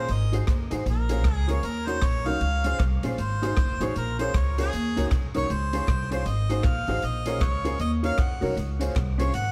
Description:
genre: ska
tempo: 156 BPM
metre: 4/4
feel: swing 61% on 8ths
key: Db major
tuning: A4 = 440 Hz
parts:
  - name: warm harmonica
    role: melody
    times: 0.0-9.5 s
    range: Ab4 to Gb5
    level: -33 LUFS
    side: equal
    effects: dub echo
  - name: mellow electric guitar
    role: accompaniment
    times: 0.0-9.3 s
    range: Db4 to Db5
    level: -36 LUFS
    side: equal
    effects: analog chorus, dub echo
  - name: dark upright piano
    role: stabs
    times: 0.0-9.3 s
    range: Db4 to C5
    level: -36 LUFS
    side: equal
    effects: none
  - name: upright bass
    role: bass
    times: 0.0-9.5 s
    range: Gb1 to F2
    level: -29 LUFS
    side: equal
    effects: none
  - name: swinging big-band drum kit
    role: drums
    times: 0.1-9.4 s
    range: hi-hat, kick drum, rim click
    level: -30 LUFS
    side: equal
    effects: none
  - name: group handclap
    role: percussion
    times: 0.5-9.1 s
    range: none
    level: -49 LUFS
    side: equal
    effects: none
room: light reverb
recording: none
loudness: -25 LUFS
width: mono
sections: 0.0-9.5 A section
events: harmonica solo 0.0-9.5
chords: 0.1 Ab7; 0.9 Bbm7; 1.6 Ebm7; 2.4 Dbmaj7; 3.2 Ab7; 4.0 Bbm7; 4.7 Ebm7; 5.5 Dbmaj7; 6.3 Ab7; 7.0 Bbm7; 7.8 Ebm7; 8.6 Dbmaj7

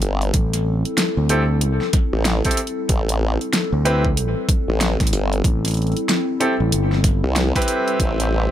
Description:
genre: glitch hop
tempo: 94 BPM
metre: 4/4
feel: swing 62% on 16ths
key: A minor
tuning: A4 = 440 Hz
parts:
  - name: dark analog pad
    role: sustained chords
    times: 0.0-8.5 s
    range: G3 to D5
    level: -25 LUFS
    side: left 2 dB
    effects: chorus, phaser, sidechain pumping
  - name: formant-sweep wobble bass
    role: bass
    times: 0.0-8.5 s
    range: G1 to C2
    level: -20 LUFS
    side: equal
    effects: chorus
  - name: pop drum kit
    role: drums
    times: 0.0-8.3 s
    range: hi-hat, snare drum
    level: -23 LUFS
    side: equal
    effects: overdrive
  - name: overdriven fingered electric bass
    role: bass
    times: 0.3-7.2 s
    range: G1 to D2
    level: -20 LUFS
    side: equal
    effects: none
  - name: electronic kick drum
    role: drums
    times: 0.3-8.2 s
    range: none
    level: -20 LUFS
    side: equal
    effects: overdrive
  - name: clear baby grand piano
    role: stabs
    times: 1.3-8.5 s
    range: C4 to B4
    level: -23 LUFS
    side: right 1 dB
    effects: sidechain pumping, tape echo
room: light reverb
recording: none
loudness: -17 LUFS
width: side -11 dB against mid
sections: 0.0-8.5 A section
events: none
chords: 0.0 Am7

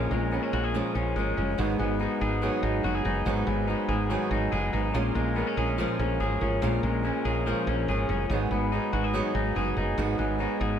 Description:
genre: indie pop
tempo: 143 BPM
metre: 4/4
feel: straight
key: G# dorian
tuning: A4 = 437 Hz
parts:
  - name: fingerpicked steel-string acoustic guitar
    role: accompaniment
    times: 0.0-10.8 s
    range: G#2 to A#4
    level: -32 LUFS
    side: right 4 dB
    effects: none
  - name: overdriven combo organ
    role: accompaniment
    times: 0.0-10.8 s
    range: C#4 to B4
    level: -34 LUFS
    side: right 4 dB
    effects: none
  - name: electric guitar through a small old amp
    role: arpeggios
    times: 0.0-10.8 s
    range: G#2 to G#4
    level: -29 LUFS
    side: left 4 dB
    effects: none
  - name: woody fretless electric bass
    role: bass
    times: 0.0-10.8 s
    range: F#1 to A#1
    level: -29 LUFS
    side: equal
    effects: none
room: light reverb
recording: none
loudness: -25 LUFS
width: side -9 dB against mid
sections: 0.0-1.6 A section; 1.6-10.8 B section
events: none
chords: 0.0 A#m7; 1.6 G#m7; 4.9 A#m7; 8.3 G#m7

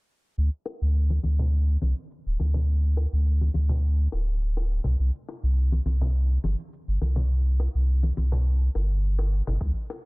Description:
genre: organic downtempo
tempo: 104 BPM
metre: 4/4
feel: straight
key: unclear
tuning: A4 = 436 Hz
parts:
  - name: warm sub bass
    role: bass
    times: 0.4-9.7 s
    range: D1 to D2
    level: -22 LUFS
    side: equal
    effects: sidechain pumping
  - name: shaker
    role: drums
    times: 0.4-10.0 s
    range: none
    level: -67 LUFS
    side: left 2 dB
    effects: none
  - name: bongos and congas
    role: percussion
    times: 0.7-10.0 s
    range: none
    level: -35 LUFS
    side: left 2 dB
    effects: none
  - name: electronic kick drum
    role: drums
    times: 9.6-9.7 s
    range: none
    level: -31 LUFS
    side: equal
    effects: studio ambience
room: little or no reverb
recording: dense, heavily limited modern master, low-pass filter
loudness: -23 LUFS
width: side -28 dB against mid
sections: 0.4-10.1 A section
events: filter sweep 0.4-10.1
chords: none

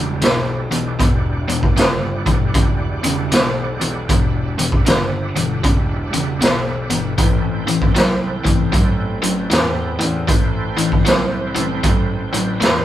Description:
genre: blues rock power trio and southern rock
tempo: 78 BPM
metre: 4/4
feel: swing 64% on 8ths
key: E minor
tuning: A4 = 440 Hz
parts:
  - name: overdriven tonewheel organ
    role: sustained chords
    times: 0.0-12.8 s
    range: C4 to G5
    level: -29 LUFS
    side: right 3 dB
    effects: slow rotary speaker, chorus vibrato
  - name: cranked stack guitar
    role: riff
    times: 0.0-12.8 s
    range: E2 to F#3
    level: -20 LUFS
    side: left 2 dB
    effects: overdrive
  - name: fuzz picked electric bass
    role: bass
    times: 0.0-12.8 s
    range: E1 to E2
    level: -25 LUFS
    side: equal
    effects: overdrive
  - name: raw garage drum kit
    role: drums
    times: 0.2-12.8 s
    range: hi-hat, kick drum, snare drum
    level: -17 LUFS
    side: equal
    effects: none
room: moderate large studio reverb, RT60 1.4 s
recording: band playing live in one room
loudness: -15 LUFS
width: side -12 dB against mid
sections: 0.0-12.8 A section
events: none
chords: 0.0 Em9; 7.2 Am9

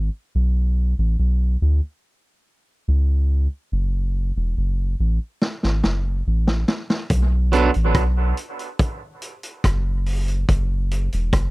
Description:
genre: dub reggae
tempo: 71 BPM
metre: 4/4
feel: straight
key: B dorian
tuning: A4 = 440 Hz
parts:
  - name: soft dub sub bass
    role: bass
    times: 0.0-11.5 s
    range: E1 to D2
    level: -19 LUFS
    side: equal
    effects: none
  - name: vintage drum kit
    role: drums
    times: 5.4-11.5 s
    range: hi-hat, kick drum, rim click, snare drum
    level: -22 LUFS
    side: equal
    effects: none
  - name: electric guitar at the edge of break-up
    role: accompaniment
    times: 7.5-7.7 s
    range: F#3 to A4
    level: -22 LUFS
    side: right 5 dB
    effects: dub echo
room: little or no reverb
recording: dry, close 1970s-style studio recording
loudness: -19 LUFS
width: side -21 dB against mid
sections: 0.0-7.1 A section; 7.1-11.5 B section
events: break 0.0-7.1; drum fill 5.4-7.1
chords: 0.3 N.C.; 3.7 F#m; 7.1 B5; 10.5 Esus2

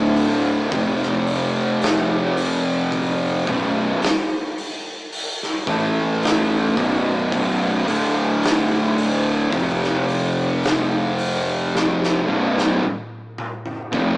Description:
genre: stoner and doom metal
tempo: 55 BPM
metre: 4/4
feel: straight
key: unclear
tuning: A4 = 440 Hz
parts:
  - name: fuzz guitar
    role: riff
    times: 0.0-14.2 s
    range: B1 to A3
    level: -24 LUFS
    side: equal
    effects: distortion
  - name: thick fuzz guitar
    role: riff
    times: 0.0-14.2 s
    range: B1 to A3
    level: -28 LUFS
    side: left 1 dB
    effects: none
  - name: thick fuzz guitar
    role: riff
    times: 0.0-14.2 s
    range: B1 to A3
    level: -22 LUFS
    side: right 1 dB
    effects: distortion
  - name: fuzz fingered electric bass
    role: bass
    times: 0.0-14.2 s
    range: B0 to A1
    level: -26 LUFS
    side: equal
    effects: overdrive
  - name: oversized low-tuned drum kit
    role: drums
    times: 0.2-14.2 s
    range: hi-hat, kick drum, snare drum, toms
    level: -24 LUFS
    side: equal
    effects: none
room: light reverb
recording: rough rehearsal-room recording, warm saturation, small speaker sound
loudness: -18 LUFS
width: side -25 dB against mid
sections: 0.0-14.2 A section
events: drum fill 11.7-14.2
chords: 0.0 D5; 0.7 F5; 3.5 B5; 5.7 A5; 6.8 B5; 7.9 D5; 9.5 F5; 12.3 B5

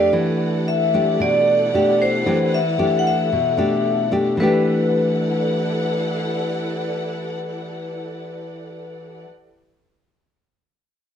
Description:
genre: bossa nova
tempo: 113 BPM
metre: 4/4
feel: straight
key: E minor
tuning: A4 = 440 Hz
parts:
  - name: vibraphone with medium hard mallets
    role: melody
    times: 0.0-9.2 s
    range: B4 to F#5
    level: -21 LUFS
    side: left 1 dB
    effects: plate reverb
  - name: nylon-string guitar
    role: accompaniment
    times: 0.0-9.3 s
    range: F2 to G4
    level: -21 LUFS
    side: equal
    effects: none
  - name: warm symphonic string section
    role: sustained chords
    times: 0.0-9.2 s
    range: E4 to F#5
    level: -28 LUFS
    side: right 1 dB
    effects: none
room: moderate studio reverb, RT60 1.0 s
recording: worn, warbling old tape, cassette tape, warbly pitch drift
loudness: -17 LUFS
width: side -8 dB against mid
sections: 0.0-4.4 A section; 4.4-8.6 B section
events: none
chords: 0.1 Em11

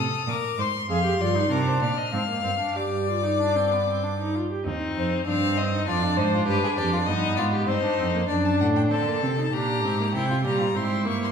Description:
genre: classical, baroque-style fugue for string quartet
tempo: 98 BPM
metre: 3/4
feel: straight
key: C minor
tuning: A4 = 441 Hz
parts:
  - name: clear violin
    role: melody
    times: 0.0-11.3 s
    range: B4 to F6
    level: -29 LUFS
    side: left 6 dB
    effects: none
  - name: rich violin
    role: second line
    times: 0.0-11.3 s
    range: C4 to F5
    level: -27 LUFS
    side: left 4 dB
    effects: none
  - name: rich cello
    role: bass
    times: 0.0-11.3 s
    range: Eb2 to D3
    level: -26 LUFS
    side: right 3 dB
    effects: none
  - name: clear viola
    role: accompaniment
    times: 0.9-11.3 s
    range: G3 to Ab4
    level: -28 LUFS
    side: right 3 dB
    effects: none
room: wet recital hall reverb, RT60 1.4 s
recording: recorded in a church or concert hall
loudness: -22 LUFS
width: side -7 dB against mid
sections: 0.0-4.7 A section; 4.7-8.3 B section; 8.3-11.3 A section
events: none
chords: 0.3 Bb; 0.9 Dm7/F; 2.8 G5; 4.7 Cm/Eb; 5.9 Ddim/F; 6.5 G; 7.7 Cm; 8.3 D7/F#; 9.5 Gm/Bb; 10.1 C7

